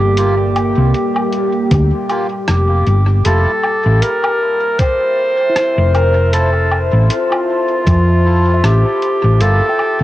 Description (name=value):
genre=ambient dub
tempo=78 BPM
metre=4/4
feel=swing 56% on 16ths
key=unclear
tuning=A4 = 440 Hz
part: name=mellow clarinet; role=melody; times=0.0-10.0 s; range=F4 to C5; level=-16 LUFS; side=equal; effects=cassette tape, dub echo
part: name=deep dark ambient pad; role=sustained chords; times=0.0-10.0 s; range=G3 to A5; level=-20 LUFS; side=left 1 dB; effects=chorus, built-in reverb, cassette tape
part: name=handpan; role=arpeggios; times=0.0-10.0 s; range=E4 to G5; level=-30 LUFS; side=left 2 dB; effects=cassette tape, tape echo
part: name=hollow-body short-scale fingered electric bass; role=bass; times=0.0-10.0 s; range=F1 to F2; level=-12 LUFS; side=equal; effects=none
part: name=melodica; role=stabs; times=0.2-9.7 s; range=Bb3 to A4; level=-27 LUFS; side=right 1 dB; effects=cassette tape, dub echo
part: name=lo-fi sampler-style drum kit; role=drums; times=0.2-10.0 s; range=hi-hat, rim click, woodblock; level=-24 LUFS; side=left 1 dB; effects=cassette tape, dub echo
part: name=electronic kick drum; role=drums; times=1.7-8.0 s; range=none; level=-16 LUFS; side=equal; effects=cassette tape
room=moderate spring reverb, RT60 2.6 s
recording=home recording on cassette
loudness=-11 LUFS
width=side -15 dB against mid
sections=0.0-10.0 A section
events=none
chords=0.0 Gm7; 3.3 Fmaj7; 9.4 Gm7